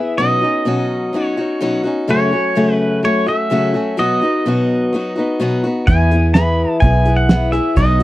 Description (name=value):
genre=honky-tonk and classic country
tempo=126 BPM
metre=4/4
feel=straight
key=E major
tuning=A4 = 440 Hz
part: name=pedal steel guitar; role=melody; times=0.0-8.0 s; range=C#5 to B5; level=-20 LUFS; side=equal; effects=none
part: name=picked old ladder-braced acoustic guitar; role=accompaniment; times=0.0-8.0 s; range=F#2 to G#4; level=-16 LUFS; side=left 1 dB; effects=none
part: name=vintage muted fingered electric bass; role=bass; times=5.9-8.0 s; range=B1 to E2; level=-14 LUFS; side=right 1 dB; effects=none
part: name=cloth-damped thuddy drum kit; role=drums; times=5.9-8.0 s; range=hi-hat, kick drum, snare drum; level=-13 LUFS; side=right 1 dB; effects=none
room=little or no reverb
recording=dry, close 1970s-style studio recording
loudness=-13 LUFS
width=side -16 dB against mid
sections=0.0-8.0 A section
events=none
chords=0.2 Badd9; 2.1 F#m; 4.0 B; 5.9 E